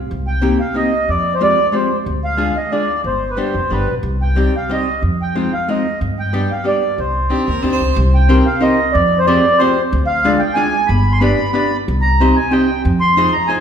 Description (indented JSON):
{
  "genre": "musette waltz",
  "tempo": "184 BPM",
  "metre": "3/4",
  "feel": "swing 53% on 8ths",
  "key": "C minor",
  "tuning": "A4 = 440 Hz",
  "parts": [
    { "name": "upright bass", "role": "bass", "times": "0.0-13.3 s", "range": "F1 to G2", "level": "-18 LUFS", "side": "equal", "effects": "none" },
    { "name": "mellow accordion", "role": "melody", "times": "0.3-13.6 s", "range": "B4 to C6", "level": "-17 LUFS", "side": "right 1 dB", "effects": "none" },
    { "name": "hollow-body jazz guitar", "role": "accompaniment", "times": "0.4-13.6 s", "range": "G3 to Eb5", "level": "-18 LUFS", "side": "left 1 dB", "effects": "none" },
    { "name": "clear violin", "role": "second line", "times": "7.3-7.9 s", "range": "G4 to C5", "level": "-24 LUFS", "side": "right 1 dB", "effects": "none" }
  ],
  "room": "wet recital hall reverb, RT60 1.7 s",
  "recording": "recorded in a church or concert hall",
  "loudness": "-13 LUFS",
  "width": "side -8 dB against mid",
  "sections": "0.1-8.0 A section; 8.0-13.6 A section",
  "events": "none",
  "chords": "0.1 Cm7; 1.1 Fmadd9; 2.1 Ddim; 3.0 G; 4.0 Cm; 5.0 Fm7; 6.0 G; 7.0 Cmadd9; 8.0 Cm7; 8.9 Fmadd9; 9.9 Ddim; 10.9 G; 11.9 Cm; 12.8 Fm7",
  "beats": "| 0.09 0.42 0.75 | 1.08 1.41 1.73 | 2.06 2.38 2.71 | 3.04 3.37 3.70 | 4.03 4.36 4.70 | 5.03 5.35 5.68 | 6.01 6.33 6.66 | 6.98 7.30 7.64 | 7.97 8.30 8.62 | 8.95 9.27 9.60 | 9.92 10.24 10.56 | 10.88 11.21 11.54 | 11.87 12.20 12.52 | 12.85 13.17 13.49"
}